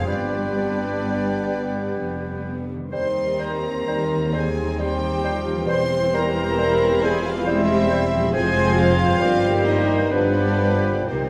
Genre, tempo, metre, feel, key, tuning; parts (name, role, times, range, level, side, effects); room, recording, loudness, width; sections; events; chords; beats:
classical; 58-71 BPM; 3/4; rubato; C minor; A4 = 444 Hz
warm chamber violin section; melody; 0.0-11.3 s; C5 to C6; -32 LUFS; equal
hollow concert flute; second line; 0.0-11.3 s; G6 to Ab6; -35 LUFS; equal
warm chamber violin section; second line; 0.0-11.3 s; Bb3 to E4; -33 LUFS; equal
warm oboe; second line; 0.0-11.3 s; B4 to C5; -36 LUFS; equal
mellow bassoon; accompaniment; 0.0-11.3 s; Eb3 to G3; -31 LUFS; equal
warm chamber viola section; accompaniment; 0.0-11.3 s; D3 to B3; -30 LUFS; equal
warm trombone section; sustained chords; 0.0-11.3 s; Eb3 to C4; -35 LUFS; equal
concert harp; arpeggios; 0.0-11.3 s; G2 to C5; -34 LUFS; equal
dark trumpet section; stabs; 0.0-11.3 s; G4 to C5; -33 LUFS; equal
dark chamber double bass section; bass; 0.0-11.3 s; E1 to Eb2; -31 LUFS; equal
rich chamber cello section; bass; 0.0-11.3 s; Eb2 to C3; -31 LUFS; equal
warm clarinet; second line; 0.1-11.3 s; C4 to C5; -32 LUFS; equal
warm French horn section; sustained chords; 0.1-11.3 s; C4 to C5; -29 LUFS; equal
wet scoring stage reverb, RT60 1.8 s; -21 LUFS; mono
0.0-11.3 A section
0.1 G; 2.9 Cm/Eb; 5.7 C7/E; 8.3 Fm; 9.2 Cm/G; 10.1 G7
| 0.08 1.02 1.98 | 2.93 3.87 4.80 | 5.69 6.59 7.47 | 8.34 9.20 10.11 | 11.09